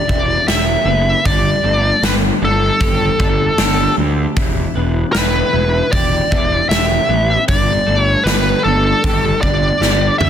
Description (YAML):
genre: quiet-loud alternative rock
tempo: 77 BPM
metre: 4/4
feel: straight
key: unclear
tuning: A4 = 440 Hz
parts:
  - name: smooth overdriven lead guitar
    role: melody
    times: 0.0-10.3 s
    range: A4 to E5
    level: -16 LUFS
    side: equal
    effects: slapback echo
  - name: twelve-string electric guitar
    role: arpeggios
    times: 0.0-10.3 s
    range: E3 to G4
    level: -24 LUFS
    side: left 2 dB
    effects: ensemble chorus
  - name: fuzz picked electric bass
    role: bass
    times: 0.1-10.3 s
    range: E1 to D2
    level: -18 LUFS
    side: equal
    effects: overdrive
  - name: huge arena drum kit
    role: drums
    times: 0.1-10.3 s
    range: hi-hat, kick drum, snare drum, toms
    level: -18 LUFS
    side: equal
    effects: none
room: small room reverb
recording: dense, heavily limited modern master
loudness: -12 LUFS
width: side -9 dB against mid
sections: 0.0-10.3 A section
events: drum fill 9.8-10.3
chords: 0.0 Em; 1.3 Gsus2; 4.4 Em; 7.5 Gsus2